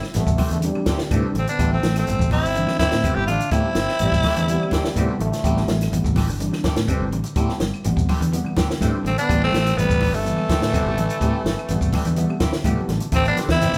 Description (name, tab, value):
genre	afrobeat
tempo	125 BPM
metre	4/4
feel	straight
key	A minor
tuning	A4 = 439 Hz
part	breathy tenor saxophone	melody	0.0-5.2, 9.1-13.8 s	A3 to G4	-26 LUFS	equal	none
part	bright trombone	second line	0.0-5.2, 9.1-13.8 s	E3 to E4	-34 LUFS	equal	none
part	compact cocktail drum kit	drums	0.0-13.8 s	hi-hat, kick drum, snare drum	-26 LUFS	equal	none
part	claves	percussion	0.0-13.6 s	none	-46 LUFS	equal	none
part	shekere	percussion	0.0-13.8 s	none	-33 LUFS	equal	none
part	electric guitar at the edge of break-up	stabs	0.1-13.8 s	E3 to G4	-34 LUFS	equal	phaser
part	fingered electric bass	bass	0.1-13.8 s	G1 to A2	-26 LUFS	equal	none
part	growling bass trombone	second line	0.2-6.1 s	G3 to A3	-32 LUFS	equal	none
part	tine electric piano	accompaniment	0.2-13.1 s	C3 to A5	-32 LUFS	equal	none
part	electric guitar at the edge of break-up	arpeggios	0.2-13.8 s	C3 to G3	-33 LUFS	equal	none
part	congas	percussion	0.3-13.5 s	none	-32 LUFS	equal	none
room	moderate large studio reverb, RT60 1.1 s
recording	band playing live in one room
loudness	-21 LUFS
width	mono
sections	0.0-13.1 A section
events	tine electric piano fill 11.7-13.1; drum fill 12.7-13.1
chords	0.0 Am7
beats	0.15 0.64 1.12 | 1.60 2.08 2.56 3.04 | 3.52 4.01 4.49 4.97 | 5.45 5.93 6.41 6.89 | 7.37 7.86 8.34 8.82 | 9.30 9.78 10.26 10.74 | 11.22 11.70 12.18 12.65 | 13.13 13.61